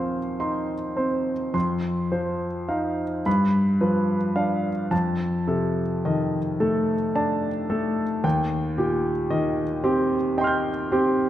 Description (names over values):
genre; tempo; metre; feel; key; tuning
classical, impressionist solo piano; 35-38 BPM (dotted quarters); 6/8; rubato; Eb lydian; A4 = 442 Hz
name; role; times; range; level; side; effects
clear grand piano; solo; 0.0-11.3 s; Eb2 to G6; -22 LUFS; equal; none
room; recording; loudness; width
moderate scoring stage reverb, RT60 1.8 s; none; -22 LUFS; side -12 dB against mid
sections
0.0-11.3 A section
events
none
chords
0.0 Ebsus2; 1.5 F5; 3.3 G7; 4.9 F6; 8.2 Eb69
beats
| 1.54 3.25 | 4.92 6.61 | 8.24 9.84